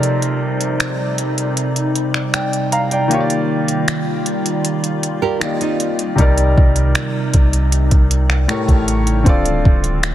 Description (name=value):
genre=contemporary R&B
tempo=78 BPM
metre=4/4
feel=straight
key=C minor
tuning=A4 = 437 Hz
part: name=clear concert grand piano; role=accompaniment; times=0.0-10.1 s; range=A2 to Bb5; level=-19 LUFS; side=left 1 dB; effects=none
part: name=glassy FM pad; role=sustained chords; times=0.0-10.1 s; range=C3 to D5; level=-22 LUFS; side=right 1 dB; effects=ensemble chorus, built-in reverb, sidechain pumping
part: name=smooth R&B drum kit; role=drums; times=0.0-10.1 s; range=finger snaps, hi-hat, kick drum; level=-17 LUFS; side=equal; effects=soft clipping on snare
part: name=nylon-string guitar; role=arpeggios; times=5.2-6.2 s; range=C4 to Bb4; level=-21 LUFS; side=right 8 dB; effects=digital delay
part: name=clean 808-style bass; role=bass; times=6.2-10.1 s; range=D1 to C2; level=-16 LUFS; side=equal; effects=none
room=light reverb, digital ambience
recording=dense, heavily limited modern master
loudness=-14 LUFS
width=side -12 dB against mid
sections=0.0-10.1 A section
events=break 0.0-6.2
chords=0.0 Cm9; 3.1 Ebmaj9; 6.2 Cm9; 8.5 A7b9; 9.3 Dm7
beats=| 0.03 0.80 1.57 2.34 | 3.11 3.88 4.65 5.42 | 6.18 6.95 7.72 8.49 | 9.26 10.03